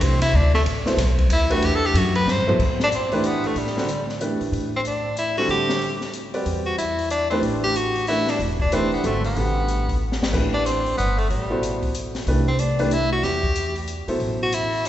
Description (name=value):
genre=modal jazz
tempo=186 BPM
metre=3/4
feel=swing 62% on 8ths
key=A dorian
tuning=A4 = 440 Hz
part: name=edgy tenor saxophone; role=melody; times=0.0-14.9 s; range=G3 to C5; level=-23 LUFS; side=left 1 dB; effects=none
part: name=clear grand piano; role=accompaniment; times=0.0-14.5 s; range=B2 to D5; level=-26 LUFS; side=right 1 dB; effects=none
part: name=upright bass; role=bass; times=0.0-14.9 s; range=E1 to A2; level=-24 LUFS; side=equal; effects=none
part: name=open jazz drum kit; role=drums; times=0.0-14.9 s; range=crash cymbal, hi-hat, kick drum, ride cymbal, snare drum, toms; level=-29 LUFS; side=left 1 dB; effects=none
room=wet church reverb, RT60 2.5 s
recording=recorded in a church or concert hall, nothing above 8.0 kHz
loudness=-19 LUFS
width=side -12 dB against mid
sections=0.0-2.6 A section; 2.6-14.9 B section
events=tenor saxophone solo 0.0-2.6; drum fill 2.3-2.6, 10.0-10.3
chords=0.0 Am11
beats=0.01 0.33 | 0.66 0.98 1.30 | 1.62 1.95 2.27 | 2.59 2.91 3.24 | 3.56 3.88 4.21 | 4.53 4.85 5.17 | 5.50 5.82 6.14 | 6.46 6.79 7.11 | 7.43 7.75 8.07 | 8.40 8.72 9.04 | 9.37 9.69 10.01 | 10.33 10.66 10.98 | 11.30 11.62 11.95 | 12.27 12.59 12.92 | 13.24 13.56 13.88 | 14.21 14.53 14.85